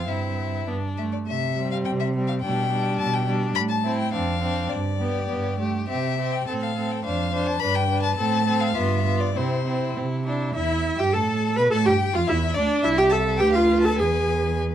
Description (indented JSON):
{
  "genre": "quick classical-period movement for string quartet",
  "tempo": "98-108 BPM",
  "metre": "2/4",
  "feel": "rubato",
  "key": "C major, A minor from 10.5 s",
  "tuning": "A4 = 437 Hz",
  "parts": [
    { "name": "clear violin", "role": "melody", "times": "0.0-14.7 s", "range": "D4 to B5", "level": "-28 LUFS", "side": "left 10 dB", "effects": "none" },
    { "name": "bright violin", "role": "second line", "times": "0.0-14.6 s", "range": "C4 to B5", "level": "-30 LUFS", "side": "left 4 dB", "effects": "none" },
    { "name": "clear viola", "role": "accompaniment", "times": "0.0-14.6 s", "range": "G3 to B4", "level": "-25 LUFS", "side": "right 2 dB", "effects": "none" },
    { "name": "rich cello", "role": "bass", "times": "0.0-14.7 s", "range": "C2 to C3", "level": "-25 LUFS", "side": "right 3 dB", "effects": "none" }
  ],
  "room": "light reverb",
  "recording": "dark, warm production, lossy compression artefacts",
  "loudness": "-21 LUFS",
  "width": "side -10 dB against mid",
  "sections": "0.0-1.3 A section; 1.3-10.5 B section; 10.5-14.7 A section",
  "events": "none",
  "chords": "0.1 C/G; 0.7 G; 1.3 C5; 2.4 G/B; 3.6 Am; 4.1 Dm7/F; 4.7 G; 5.9 C; 6.5 Am; 7.0 Dm7/F; 7.6 G; 8.2 Am; 8.8 G7; 9.3 C; 10.5 A5/E; 11.7 Dm; 12.8 Am/C; 13.4 Bdim/D; 14.0 E"
}